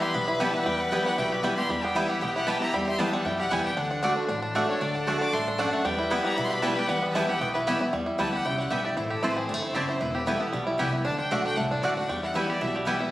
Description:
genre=bluegrass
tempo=231 BPM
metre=4/4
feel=straight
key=E minor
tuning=A4 = 439 Hz
part: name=clear fiddle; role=melody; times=0.0-13.1 s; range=G4 to D6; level=-32 LUFS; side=left 1 dB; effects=plate reverb
part: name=rich fiddle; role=second line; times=0.0-7.8 s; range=G4 to B4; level=-33 LUFS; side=left 2 dB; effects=none
part: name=picked steel-string acoustic guitar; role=accompaniment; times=0.0-13.1 s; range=E2 to F#4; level=-32 LUFS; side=equal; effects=none
part: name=bluegrass banjo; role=arpeggios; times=0.0-13.1 s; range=G3 to G4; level=-29 LUFS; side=equal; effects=none
part: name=upright bass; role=bass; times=0.1-12.9 s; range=E1 to F#2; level=-36 LUFS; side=equal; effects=none
part: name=mandolin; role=stabs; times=0.4-13.0 s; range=A3 to A5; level=-30 LUFS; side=right 1 dB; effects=none
room=moderate studio reverb, RT60 0.9 s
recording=recorded on a phone in the room, studio reverb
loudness=-24 LUFS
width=side -15 dB against mid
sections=0.0-7.9 A section; 7.9-13.1 B section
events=fiddle solo 0.0-7.9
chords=0.0 Em; 3.8 D; 5.9 Em; 9.0 Am; 10.0 Em; 11.1 D; 12.1 Em

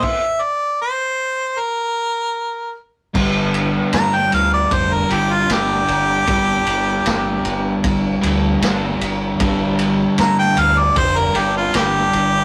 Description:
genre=blues rock power trio and southern rock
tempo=77 BPM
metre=4/4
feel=straight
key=G minor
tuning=A4 = 439 Hz
part: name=bright harmonica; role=melody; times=0.0-12.4 s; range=F4 to Bb5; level=-20 LUFS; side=equal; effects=overdrive
part: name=vintage drum kit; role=drums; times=0.0-12.3 s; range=crash cymbal, kick drum, ride cymbal, snare drum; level=-24 LUFS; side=equal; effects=none
part: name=crunchy overdriven guitar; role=riff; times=3.1-12.4 s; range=G2 to G3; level=-22 LUFS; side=equal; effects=none
part: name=growling fingered electric bass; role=bass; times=3.1-12.4 s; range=F1 to G2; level=-26 LUFS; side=equal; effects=overdrive
room=light reverb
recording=rough rehearsal-room recording, warm saturation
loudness=-18 LUFS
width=mono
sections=0.0-3.1 A section; 3.1-12.4 B section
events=stop 0.0-3.1; harmonica solo 3.1-12.4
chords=0.0 N.C.; 3.1 G5

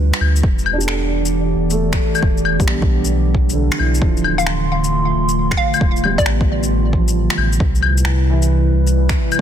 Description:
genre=future garage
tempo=134 BPM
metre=4/4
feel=swing 67% on 16ths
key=D dorian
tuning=A4 = 440 Hz
part: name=felt-muted upright piano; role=accompaniment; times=0.0-9.4 s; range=D3 to A4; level=-23 LUFS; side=right 2 dB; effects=sidechain pumping, ping-pong delay
part: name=warbly tape-like pad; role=sustained chords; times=0.0-9.4 s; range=C3 to C6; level=-22 LUFS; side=right 1 dB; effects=chorus, built-in reverb, sidechain pumping
part: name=warm sub bass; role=bass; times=0.0-9.2 s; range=D1 to D2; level=-18 LUFS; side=equal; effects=sidechain pumping
part: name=electronic finger snaps, shaker and claves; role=drums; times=0.1-9.4 s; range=none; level=-22 LUFS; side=left 5 dB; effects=overdrive, soft clipping on snare
part: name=electronic kick drum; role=drums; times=0.4-9.2 s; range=none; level=-18 LUFS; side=equal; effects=overdrive
part: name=hollow square pluck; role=melody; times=4.4-6.5 s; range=D5 to F5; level=-23 LUFS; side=left 1 dB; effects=chorus, digital delay
room=light reverb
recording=dense, heavily limited modern master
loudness=-14 LUFS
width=side -9 dB against mid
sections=0.0-9.4 A section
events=none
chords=0.4 Em7; 4.0 Dm7; 7.6 Cmaj7

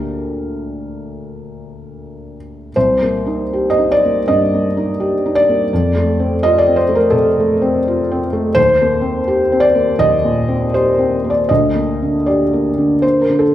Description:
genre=neoclassical minimalist piano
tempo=82 BPM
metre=4/4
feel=uneven beats, rubato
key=C dorian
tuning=A4 = 438 Hz
part: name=felt-muted upright piano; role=solo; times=0.0-13.5 s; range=C2 to Eb5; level=-13 LUFS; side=equal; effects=none
room=wet recital hall reverb, RT60 1.4 s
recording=recorded in a church or concert hall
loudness=-13 LUFS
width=side -12 dB against mid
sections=0.0-2.8 A section; 2.8-13.5 B section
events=none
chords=0.0 Gm/D; 2.8 Cm7; 5.7 F; 8.6 Cm7/Eb; 11.5 Gm/D

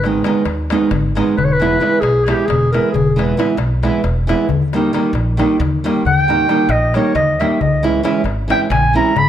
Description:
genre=balkan folk, Balkan wedding band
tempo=270 BPM (eighths)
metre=7/8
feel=straight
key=unclear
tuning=A4 = 439 Hz
part: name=mellow clarinet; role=melody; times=0.0-3.1, 6.1-9.3 s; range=G4 to B5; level=-16 LUFS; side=equal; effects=none
part: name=nylon-string guitar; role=accompaniment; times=0.0-9.1 s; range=D#3 to E4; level=-17 LUFS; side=right 2 dB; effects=none
part: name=upright bass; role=bass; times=0.0-9.3 s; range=E1 to D#2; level=-20 LUFS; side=equal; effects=none
part: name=darbuka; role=percussion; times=0.0-9.3 s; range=none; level=-21 LUFS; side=left 5 dB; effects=none
room=moderate recital hall reverb, RT60 1.5 s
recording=none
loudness=-13 LUFS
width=side -10 dB against mid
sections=0.0-9.3 A section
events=clarinet solo 0.0-9.3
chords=0.0 G#m; 1.4 E; 4.5 D#; 7.6 C#m

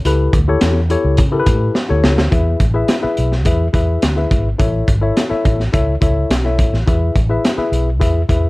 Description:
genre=uptempo 1960s-style soul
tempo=106 BPM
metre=4/4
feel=straight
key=A major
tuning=A4 = 440 Hz
part: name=tine electric piano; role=accompaniment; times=0.1-8.5 s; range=E4 to E5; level=-19 LUFS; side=left 3 dB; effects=none
part: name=vintage muted fingered electric bass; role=bass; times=0.1-8.5 s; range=G#1 to C#3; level=-17 LUFS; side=equal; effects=none
part: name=crunchy breakbeat drum kit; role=drums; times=0.1-8.4 s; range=hi-hat, kick drum, snare drum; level=-17 LUFS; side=equal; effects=none
room=little or no reverb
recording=none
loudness=-13 LUFS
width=side -20 dB against mid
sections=0.0-2.3 A section; 2.3-8.5 B section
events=drum fill 1.8-2.3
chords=0.0 A7; 2.3 E; 4.6 A; 6.9 E

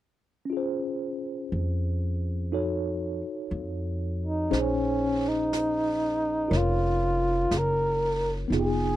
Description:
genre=jazz ballad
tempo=60 BPM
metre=4/4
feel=swing 67% on 8ths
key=Bb minor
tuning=A4 = 440 Hz
part: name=mellow tine electric piano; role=accompaniment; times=0.5-9.0 s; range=Cb4 to Db5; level=-30 LUFS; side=equal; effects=medium stereo tremolo
part: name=upright bass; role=bass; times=1.5-9.0 s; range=F1 to F2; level=-29 LUFS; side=equal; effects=none
part: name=breathy flugelhorn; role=melody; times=4.3-9.0 s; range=Db4 to Bb4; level=-26 LUFS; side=equal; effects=none
part: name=jazz brush drum kit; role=drums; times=4.5-9.0 s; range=brushed snare drum, hi-hat, snare drum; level=-40 LUFS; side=right 1 dB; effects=none
room=little or no reverb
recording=dry, close 1970s-style studio recording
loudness=-25 LUFS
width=side -14 dB against mid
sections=0.5-4.5 A section; 4.5-9.0 B section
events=none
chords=0.5 Dbmaj7; 2.5 F7b9b13; 4.5 Bbm11

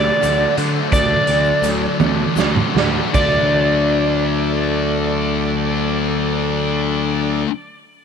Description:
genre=psychedelic rock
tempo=51-59 BPM (dotted quarters)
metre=6/8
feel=straight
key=D major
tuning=A4 = 440 Hz
part: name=overdriven slide guitar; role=melody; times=0.0-7.4 s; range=D5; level=-20 LUFS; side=right 1 dB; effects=tape echo
part: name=overdriven combo organ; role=sustained chords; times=0.0-7.4 s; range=F#3 to D5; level=-26 LUFS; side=right 15 dB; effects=none
part: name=thick fuzz guitar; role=riff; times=0.0-7.5 s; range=D3 to F#4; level=-20 LUFS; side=left 13 dB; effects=distortion, phaser
part: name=fuzz picked electric bass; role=bass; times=0.0-7.4 s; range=D2 to D3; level=-22 LUFS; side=right 1 dB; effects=overdrive
part: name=raw garage drum kit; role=drums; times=0.2-3.3 s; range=crash cymbal, hi-hat, kick drum, snare drum, toms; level=-21 LUFS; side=right 5 dB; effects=none
part: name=egg shaker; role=percussion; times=0.2-3.5 s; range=none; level=-37 LUFS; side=left 18 dB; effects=none
room=small room ambience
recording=1960s-style stereo with parts hard left and right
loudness=-15 LUFS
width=side -7 dB against mid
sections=0.0-3.1 A section; 3.1-7.8 B section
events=slowing down 0.0-3.1; drum fill 2.0-3.1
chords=0.0 D

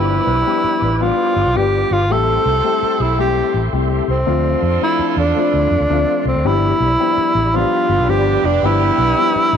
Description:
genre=soul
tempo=110 BPM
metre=4/4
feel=swing 65% on 8ths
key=unclear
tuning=A4 = 440 Hz
part: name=breathy tenor saxophone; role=melody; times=0.0-9.6 s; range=C4 to A4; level=-16 LUFS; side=right 1 dB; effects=tape echo
part: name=warm horn section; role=second line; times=0.0-9.6 s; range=F3 to C5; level=-25 LUFS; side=right 14 dB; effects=none
part: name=dark upright piano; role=accompaniment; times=0.0-9.6 s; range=F3 to G4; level=-21 LUFS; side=left 14 dB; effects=none
part: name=mellow tonewheel organ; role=sustained chords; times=0.0-9.6 s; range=G4 to D6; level=-28 LUFS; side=right 1 dB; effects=slow rotary speaker, chorus vibrato
part: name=vintage muted fingered electric bass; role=bass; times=0.0-9.6 s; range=F1 to F2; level=-19 LUFS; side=equal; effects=none
room=light reverb, studio reverb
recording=1960s-style stereo with parts hard left and right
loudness=-14 LUFS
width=side -8 dB against mid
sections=0.0-6.5 A section; 6.5-9.6 A section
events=none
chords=0.0 G7; 2.1 Am7; 4.3 Dm7; 6.5 G7

